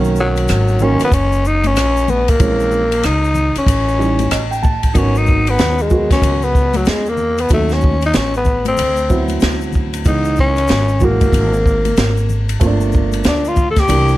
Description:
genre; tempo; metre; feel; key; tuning
hip hop, jazz-hop; 94 BPM; 4/4; swing 63% on 16ths; G# minor; A4 = 438 Hz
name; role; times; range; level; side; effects
dark concert grand piano; accompaniment; 0.0-14.2 s; B2 to A5; -20 LUFS; right 4 dB; none
upright bass; bass; 0.0-14.2 s; F#1 to E2; -18 LUFS; equal; none
tube shaker and congas; percussion; 0.0-14.2 s; none; -28 LUFS; left 5 dB; none
growling tenor saxophone; melody; 0.2-14.2 s; F#3 to A4; -17 LUFS; left 1 dB; none
open jazz drum kit; drums; 0.4-14.1 s; hi-hat, kick drum, ride cymbal, rim click, snare drum; -18 LUFS; equal; none
room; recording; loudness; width
small room ambience; none; -12 LUFS; side -16 dB against mid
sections
0.0-5.0 A section; 5.0-14.2 B section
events
grand piano fill 4.0-5.0; tenor saxophone solo 5.0-14.2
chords
0.0 Bmaj7; 2.4 A#m7b5; 3.7 A7#11; 5.0 G#m7; 7.5 D#m7b5; 8.8 D13; 10.1 C#m7; 12.6 Gm7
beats
0.49 1.12 1.76 | 2.40 3.04 3.68 4.32 | 4.95 5.59 6.23 6.87 | 7.51 8.14 8.78 9.42 | 10.06 10.70 11.34 11.97 | 12.61 13.25 13.89

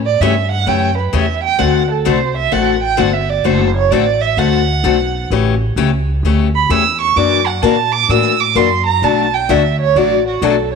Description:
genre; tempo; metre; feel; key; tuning
acoustic string swing (jazz manouche); 129 BPM; 4/4; swing 65% on 8ths; A mixolydian; A4 = 439 Hz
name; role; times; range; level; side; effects
upright bass; bass; 0.0-10.8 s; F#1 to A#2; -18 LUFS; right 1 dB; none
warm violin; melody; 0.1-10.8 s; F#4 to E6; -16 LUFS; right 10 dB; none
picked steel-string acoustic guitar; accompaniment; 0.2-10.5 s; B2 to A4; -16 LUFS; left 12 dB; none
room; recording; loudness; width
moderate echo chamber reverb, RT60 2.1 s; 1960s-style stereo with parts hard left and right; -12 LUFS; side -5 dB against mid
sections
0.0-10.8 A section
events
violin solo 0.0-10.8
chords
0.0 A7; 1.6 D7; 5.3 A7; 7.2 F#7alt; 9.0 Bm7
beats
0.20 0.67 1.13 | 1.60 2.06 2.52 2.99 | 3.45 3.92 4.38 4.84 | 5.31 5.78 6.24 6.71 | 7.17 7.64 8.10 8.57 | 9.03 9.50 9.96 10.43

